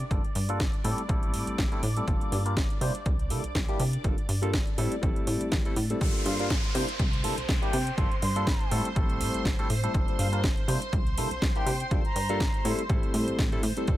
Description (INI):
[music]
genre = filtered disco house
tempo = 122 BPM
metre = 4/4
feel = swing 55% on 16ths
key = G dorian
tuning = A4 = 440 Hz
[part]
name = string machine, full ensemble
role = sustained chords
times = 0.0-14.0 s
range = G4 to D6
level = -38 LUFS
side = equal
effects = phaser, ensemble chorus, sidechain pumping, low-pass filter
[part]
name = plucky analog bass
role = bass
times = 0.0-14.0 s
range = G1 to C3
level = -30 LUFS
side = equal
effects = tube saturation, sidechain pumping, low-pass filter
[part]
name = house drum kit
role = drums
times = 0.0-14.0 s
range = hi-hat, snare drum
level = -34 LUFS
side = equal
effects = sidechain pumping on hats
[part]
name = barky tine electric piano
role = accompaniment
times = 0.1-14.0 s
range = G3 to C5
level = -33 LUFS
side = equal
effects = phaser, sidechain pumping, low-pass filter
[part]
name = electronic kick drum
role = drums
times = 0.1-14.0 s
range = none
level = -28 LUFS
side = equal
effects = none
[part]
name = downlifter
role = sound effects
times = 6.0-9.9 s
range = none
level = -37 LUFS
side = equal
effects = none
[part]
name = reedy concert flute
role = melody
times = 6.3-12.7 s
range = F5 to C6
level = -36 LUFS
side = equal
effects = vintage 12-bit sampler grit, sidechain pumping, low-pass filter, digital delay
[sound]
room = little or no reverb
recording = none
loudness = -25 LUFS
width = side -14 dB against mid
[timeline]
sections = 0.0-6.0 A section; 6.0-14.0 B section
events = drop 6.0-14.0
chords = 0.1 Gm9; 0.8 Am7; 2.1 Gm9; 2.8 C9; 4.0 Gm9; 4.8 Am7; 6.0 Gm9; 6.7 C9; 8.0 Gm9; 8.7 Am7; 9.9 Gm9; 10.7 C9; 11.9 Gm9; 12.7 Am7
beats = | 0.11 0.60 1.09 1.58 | 2.08 2.57 3.06 3.55 | 4.04 4.54 5.03 5.52 | 6.01 6.50 6.99 7.49 | 7.98 8.47 8.96 9.45 | 9.95 10.44 10.93 11.42 | 11.91 12.40 12.90 13.39 | 13.88